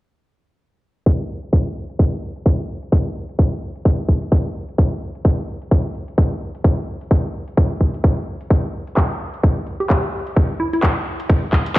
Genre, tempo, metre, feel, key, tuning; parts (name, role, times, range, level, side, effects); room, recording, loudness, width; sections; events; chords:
bass house; 129 BPM; 4/4; swing 58% on 16ths; A4 = 441 Hz
electronic kick drum; drums; 1.1-11.8 s; -14 LUFS; equal
garage drum kit; drums; 1.1-11.8 s; handclaps, hi-hat; -24 LUFS; equal; low-pass filter on hats, low-pass filter on snare
hollow square pluck; melody; 9.8-10.8 s; E4 to G4; -24 LUFS; equal; chorus, cassette tape, digital delay
little or no reverb; played on a big sound system in a bare room, stone room reverb, low-pass filter; -17 LUFS; side -18 dB against mid
1.1-11.8 A section
filter sweep on drum 1.1-11.8; filter sweep 1.1-11.8